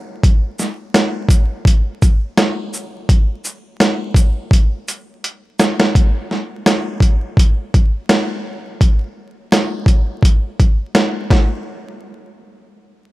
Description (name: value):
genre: hip hop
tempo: 84 BPM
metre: 4/4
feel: swing 56% on 16ths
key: none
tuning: none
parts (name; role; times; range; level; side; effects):
- boom bap sampler-style drum kit; drums; 0.2-11.5 s; hi-hat, kick drum, shaker, snare drum; -13 LUFS; equal; overdrive
room: light reverb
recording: vinyl crackle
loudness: -13 LUFS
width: side -18 dB against mid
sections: 0.0-5.9 A section; 5.9-11.7 B section; 11.7-13.1 C section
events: drum fill 4.5-5.9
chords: none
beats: | 0.23 0.95 1.66 2.38 | 3.09 3.80 4.52 5.23 | 5.95 6.66 7.38 8.09 | 8.80 9.52 10.23 10.95